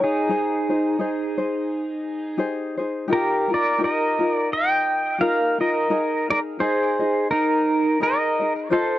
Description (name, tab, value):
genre	Hawaiian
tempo	86 BPM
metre	4/4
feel	swing 57% on 8ths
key	Ab major, Eb major from 3.1 s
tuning	A4 = 439 Hz
part	pedal steel guitar	melody	0.0-9.0 s	Eb4 to G5	-20 LUFS	right 1 dB	tape echo
part	tenor ukulele	accompaniment	0.0-9.0 s	Eb4 to Eb5	-25 LUFS	left 3 dB	none
room	light reverb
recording	dry, close 1970s-style studio recording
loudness	-20 LUFS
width	side -14 dB against mid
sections	0.0-3.1 A section; 3.1-9.0 B section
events	none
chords	0.3 Abmaj7; 3.1 Ebadd9; 5.9 Absus2